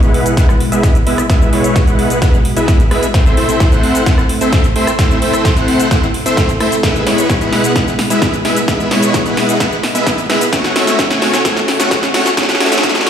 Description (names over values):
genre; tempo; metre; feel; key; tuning
EDM, festival progressive house; 130 BPM; 4/4; straight; E major; A4 = 437 Hz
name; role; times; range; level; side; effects
lush unison pad; sustained chords; 0.0-13.1 s; B2 to D#5; -21 LUFS; equal; chorus, sidechain pumping
big supersaw lead; riff; 0.0-13.1 s; G#3 to G#5; -14 LUFS; equal; sidechain pumping, low-pass filter, ping-pong delay
big-room dance drum kit; drums; 0.0-13.1 s; hi-hat, rim click, shaker, snare drum; -18 LUFS; equal; none
electronic kick drum; drums; 0.4-12.9 s; none; -13 LUFS; equal; none
riser; sound effects; 9.8-13.1 s; none; -27 LUFS; right 1 dB; none
room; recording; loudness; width
moderate lush hall reverb, RT60 2.2 s; played on a big sound system in a bare room, large studio reverb, high-pass filter; -10 LUFS; side -9 dB against mid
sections
0.0-13.1 A section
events
build-up 0.0-13.1; drum fill 0.0-13.1; filter sweep on supersaw synth 0.0-13.1; filter sweep on analog synth pad 0.0-13.1; filter sweep 0.0-13.1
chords
0.0 E; 3.1 Am; 6.8 E; 10.5 F#m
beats
0.37 0.83 | 1.30 1.76 2.22 2.68 | 3.14 3.60 4.07 4.53 | 4.99 5.45 5.91 6.37 | 6.83 7.30 7.76 8.22 | 8.68 9.14 9.60 10.07 | 10.53 10.99 11.45 11.91 | 12.37 12.84